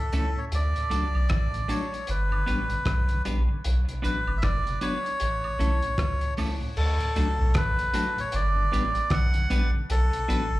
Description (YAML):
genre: roots reggae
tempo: 77 BPM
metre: 4/4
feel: swing 60% on 16ths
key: D major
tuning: A4 = 442 Hz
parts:
  - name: melodica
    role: melody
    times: 0.0-10.6 s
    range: A4 to F#5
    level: -29 LUFS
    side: equal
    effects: dub echo, slapback echo
  - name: mellow tonewheel organ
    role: accompaniment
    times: 0.0-10.6 s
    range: D2 to D4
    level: -34 LUFS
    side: left 2 dB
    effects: chorus vibrato, stopped rotary speaker, slapback echo
  - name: soft dub sub bass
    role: bass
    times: 0.0-10.6 s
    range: F#1 to D2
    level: -25 LUFS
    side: equal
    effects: none
  - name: semi-hollow electric guitar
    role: accompaniment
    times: 0.1-10.5 s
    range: A3 to B4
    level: -37 LUFS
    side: right 3 dB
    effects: dub echo, slapback echo
  - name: cloth-damped thuddy drum kit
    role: drums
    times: 0.1-10.5 s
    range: crash cymbal, hi-hat, kick drum, rim click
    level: -31 LUFS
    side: equal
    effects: none
  - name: tambourine and woodblock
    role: percussion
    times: 0.1-10.5 s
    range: none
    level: -44 LUFS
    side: right 5 dB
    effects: none
room: little or no reverb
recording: live gig heard through the venue's PA, club reverb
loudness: -23 LUFS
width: side -17 dB against mid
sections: 0.0-6.8 A section; 6.8-10.6 B section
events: none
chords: 0.0 A; 0.5 D; 2.1 G; 3.6 Bm; 5.2 A; 6.8 D; 8.3 G; 9.9 Bm